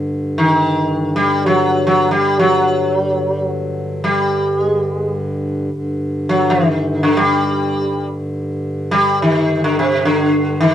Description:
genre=indian classical, Hindustani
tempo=free time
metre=none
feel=none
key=unclear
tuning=A4 = 440 Hz
part: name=hand-pumped harmonium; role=drone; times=0.0-10.7 s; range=G2 to D3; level=-21 LUFS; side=equal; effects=none
part: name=sitar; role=melody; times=0.4-10.7 s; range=C3 to G3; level=-15 LUFS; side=equal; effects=none
room=moderate studio ambience, RT60 0.5 s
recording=dark, warm production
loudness=-14 LUFS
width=side -10 dB against mid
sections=0.0-10.7 A section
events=none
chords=none

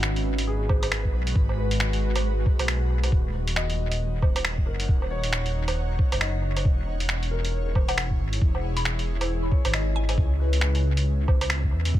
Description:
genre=future garage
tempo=136 BPM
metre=4/4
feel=swing 60% on 16ths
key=G# minor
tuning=A4 = 440 Hz
part: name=warm upright piano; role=accompaniment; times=0.0-12.0 s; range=D#4 to D#5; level=-37 LUFS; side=left 4 dB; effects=sidechain pumping, tape echo
part: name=granular cloud pad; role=sustained chords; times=0.0-12.0 s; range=G#3 to F#5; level=-34 LUFS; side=equal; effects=built-in reverb, sidechain pumping
part: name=dark detuned saw bass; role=bass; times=0.0-12.0 s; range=D#1 to E2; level=-25 LUFS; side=equal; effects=none
part: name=lo-fi sampler-style drum kit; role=drums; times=0.0-11.9 s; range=finger snaps, hi-hat, woodblock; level=-29 LUFS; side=right 2 dB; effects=overdrive, dub echo
part: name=electronic kick drum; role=drums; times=0.7-12.0 s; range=none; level=-23 LUFS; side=equal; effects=overdrive
part: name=mallet-like synth pluck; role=melody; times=7.9-10.1 s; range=F#5 to B5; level=-36 LUFS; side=left 6 dB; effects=wide subtle chorus, analog delay
room=digital ambience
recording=echo-heavy mix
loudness=-22 LUFS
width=side -13 dB against mid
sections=0.0-12.0 A section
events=none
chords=0.0 G#m7; 3.1 D#m7; 6.6 E6; 10.2 C#m7

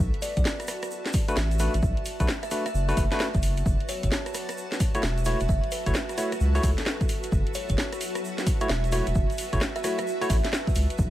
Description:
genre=UK garage, two-step garage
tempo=131 BPM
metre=4/4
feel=swing 64% on 16ths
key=unclear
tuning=A4 = 440 Hz
part: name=saturated sub bass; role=bass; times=0.0-11.1 s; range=E1 to C#2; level=-25 LUFS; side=equal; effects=none
part: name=granular cloud pad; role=texture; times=0.0-11.1 s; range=F#4 to A5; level=-35 LUFS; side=right 1 dB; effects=built-in reverb, sidechain pumping
part: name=house drum kit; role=drums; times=0.1-11.0 s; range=hi-hat, rim click, snare drum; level=-31 LUFS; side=equal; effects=none
part: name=kalimba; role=melody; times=0.2-10.5 s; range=A4 to E5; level=-35 LUFS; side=right 1 dB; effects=vintage 12-bit sampler grit
part: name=tube shaker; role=percussion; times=0.2-11.1 s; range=none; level=-41 LUFS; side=right 3 dB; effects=none
part: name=electronic kick drum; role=drums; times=0.4-11.1 s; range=none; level=-26 LUFS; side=equal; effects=none
part: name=barky tine electric piano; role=stabs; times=1.3-10.4 s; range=A3 to C#5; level=-30 LUFS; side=left 1 dB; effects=none
room=little or no reverb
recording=vinyl crackle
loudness=-24 LUFS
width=side -14 dB against mid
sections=0.0-11.1 A section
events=none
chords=0.0 Bm7; 3.7 F#m7

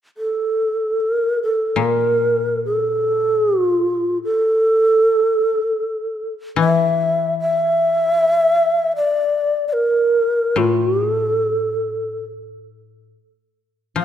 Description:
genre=japanese traditional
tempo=74 BPM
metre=4/4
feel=rubato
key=unclear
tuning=A4 = 440 Hz
part: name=breathy mellow long shakuhachi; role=melody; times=0.2-14.0 s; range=A4 to F5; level=-16 LUFS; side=equal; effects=none
part: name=koto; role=accompaniment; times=1.8-14.0 s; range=A2 to F3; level=-23 LUFS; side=left 6 dB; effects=none
room=moderate scoring stage reverb, RT60 1.9 s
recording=none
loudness=-16 LUFS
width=side -10 dB against mid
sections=1.0-14.0 A section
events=none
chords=none

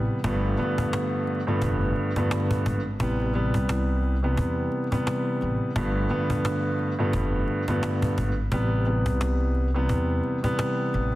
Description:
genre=hip hop, boom-bap hip-hop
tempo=87 BPM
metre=4/4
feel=swing 57% on 16ths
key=A minor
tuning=A4 = 441 Hz
part: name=dark baby grand piano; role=accompaniment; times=0.0-11.2 s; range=G2 to B3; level=-25 LUFS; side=equal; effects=none
part: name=upright bass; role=bass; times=0.0-11.1 s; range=F1 to E2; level=-26 LUFS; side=equal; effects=none
part: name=cajon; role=drums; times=0.2-11.0 s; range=none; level=-30 LUFS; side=equal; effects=none
room=light reverb, small room reverb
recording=dense, heavily limited modern master, vinyl crackle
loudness=-23 LUFS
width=side -16 dB against mid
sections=0.0-11.2 A section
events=none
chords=0.2 G7; 3.0 Am7; 5.8 G7; 8.5 Am7

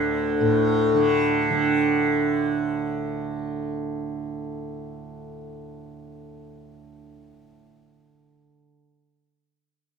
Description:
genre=indian classical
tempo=110 BPM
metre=7/4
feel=straight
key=unclear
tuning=A4 = 440 Hz
part: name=sitar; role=melody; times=0.0-1.4 s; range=none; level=barely audible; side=none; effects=none
part: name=tanpura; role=drone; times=0.0-8.7 s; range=D2 to D3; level=-22 LUFS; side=right 1 dB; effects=none
room=moderate studio reverb, RT60 0.5 s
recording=band playing live in one room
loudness=-21 LUFS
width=side -6 dB against mid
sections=0.0-2.0 A section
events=none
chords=none

